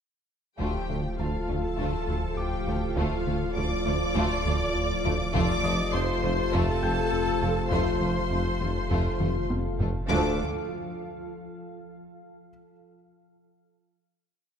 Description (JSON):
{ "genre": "cinematic, hybrid orchestral and electronic film score", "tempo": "101 BPM", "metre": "4/4", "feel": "straight", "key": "D phrygian", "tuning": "A4 = 440 Hz", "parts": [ { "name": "warm symphonic violin section", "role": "melody", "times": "0.6-10.4 s", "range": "F5 to D6", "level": "-34 LUFS", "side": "left 3 dB", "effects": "none" }, { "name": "warm symphonic violin section", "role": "second line", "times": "0.6-10.4 s", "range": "A3 to A4", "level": "-36 LUFS", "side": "left 3 dB", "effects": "none" }, { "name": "warm symphonic viola section", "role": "accompaniment", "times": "0.6-10.4 s", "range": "D4 to D5", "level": "-35 LUFS", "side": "right 2 dB", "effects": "none" }, { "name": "dark French horn section", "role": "sustained chords", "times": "0.6-10.4 s", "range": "A3 to F4", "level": "-34 LUFS", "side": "left 7 dB", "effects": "none" }, { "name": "glassy FM pad", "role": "sustained chords", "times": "0.8-10.4 s", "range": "F3 to F5", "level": "-35 LUFS", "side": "right 1 dB", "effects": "ensemble chorus, built-in reverb" }, { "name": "mellow trombone section", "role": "sustained chords", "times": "0.6-10.3 s", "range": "A2 to F3", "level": "-37 LUFS", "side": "right 2 dB", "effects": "none" }, { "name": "round analog bass", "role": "riff", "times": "0.6-10.0 s", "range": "D2 to F3", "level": "-33 LUFS", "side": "left 2 dB", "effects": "none" }, { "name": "warm sub bass", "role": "bass", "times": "0.6-10.4 s", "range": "D1 to F1", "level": "-35 LUFS", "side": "equal", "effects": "none" }, { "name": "warm symphonic cello section", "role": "bass", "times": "0.6-10.4 s", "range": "D2 to F2", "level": "-36 LUFS", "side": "right 3 dB", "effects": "none" }, { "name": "warm symphonic double bass section", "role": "bass", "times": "0.6-10.4 s", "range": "F1 to D2", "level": "-36 LUFS", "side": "right 4 dB", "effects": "none" }, { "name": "warm tuba", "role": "bass", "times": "0.6-10.3 s", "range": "F1 to D2", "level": "-36 LUFS", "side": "right 4 dB", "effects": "none" }, { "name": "taiko ensemble", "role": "drums", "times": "0.6-11.2 s", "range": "none", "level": "-34 LUFS", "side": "equal", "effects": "none" }, { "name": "bright concert grand piano", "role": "texture", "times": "1.2-10.1 s", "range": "Eb5 to G6", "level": "-43 LUFS", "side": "equal", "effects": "ping-pong delay" } ], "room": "moderate concert hall reverb, RT60 2.1 s", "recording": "none", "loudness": "-25 LUFS", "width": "side -7 dB against mid", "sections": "0.6-10.1 theme; 10.1-12.5 final chord", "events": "drum fill 9.2-10.1", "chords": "0.6 Dm; 5.3 F; 10.1 Dm" }